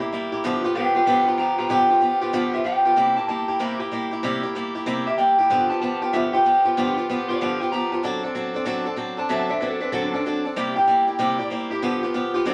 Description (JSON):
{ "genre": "rock", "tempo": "190 BPM", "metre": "4/4", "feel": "swing 64% on 8ths", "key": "G mixolydian", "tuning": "A4 = 440 Hz", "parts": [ { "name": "electric guitar through a small old amp", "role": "melody", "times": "0.0-12.0 s", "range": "D4 to Bb5", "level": "-24 LUFS", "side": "equal", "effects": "spring reverb" }, { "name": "picked swing-style acoustic guitar", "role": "accompaniment", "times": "0.0-12.5 s", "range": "G2 to A4", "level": "-26 LUFS", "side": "equal", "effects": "none" } ], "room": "moderate studio reverb, RT60 0.7 s", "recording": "vinyl crackle", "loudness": "-22 LUFS", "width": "mono", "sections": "0.0-12.5 A section", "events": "clean electric guitar solo 0.0-12.5", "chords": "0.4 G7; 3.0 C7; 5.5 G7; 8.0 D7; 10.6 C7; 11.8 G7" }